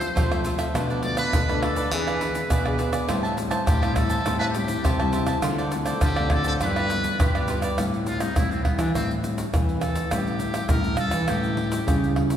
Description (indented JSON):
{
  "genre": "samba and choro",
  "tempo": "102 BPM",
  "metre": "4/4",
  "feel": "straight",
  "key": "A minor from 7.8 s",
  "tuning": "A4 = 440 Hz",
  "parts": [
    { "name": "trumpet with metal mute", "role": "melody", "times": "0.0-12.2 s", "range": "B3 to D5", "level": "-30 LUFS", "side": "equal", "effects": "none" },
    { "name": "nylon-string guitar", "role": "accompaniment", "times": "0.0-12.4 s", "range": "F2 to G#4", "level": "-30 LUFS", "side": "left 2 dB", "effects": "none" },
    { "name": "nylon-string guitar", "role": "bass", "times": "0.0-12.4 s", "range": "G2 to F3", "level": "-28 LUFS", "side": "equal", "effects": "none" },
    { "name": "egg shaker, pandeiro, surdo and tamborim", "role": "percussion", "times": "0.0-12.4 s", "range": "none", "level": "-25 LUFS", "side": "equal", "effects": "none" },
    { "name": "cavaquinho", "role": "accompaniment", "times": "0.2-7.8 s", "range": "E4 to A5", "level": "-30 LUFS", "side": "right 1 dB", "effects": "none" }
  ],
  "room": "wet church reverb, RT60 3.1 s",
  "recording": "recorded in a church or concert hall",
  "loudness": "-21 LUFS",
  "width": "side -10 dB against mid",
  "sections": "0.0-7.8 A section; 7.8-12.4 B section",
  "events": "muted trumpet solo 7.8-12.4",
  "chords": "0.0 Fmaj7; 0.8 Bm7b5; 1.9 E7b13; 3.1 Am7; 5.4 Dm7; 6.6 G6; 7.8 Am7; 10.1 A7"
}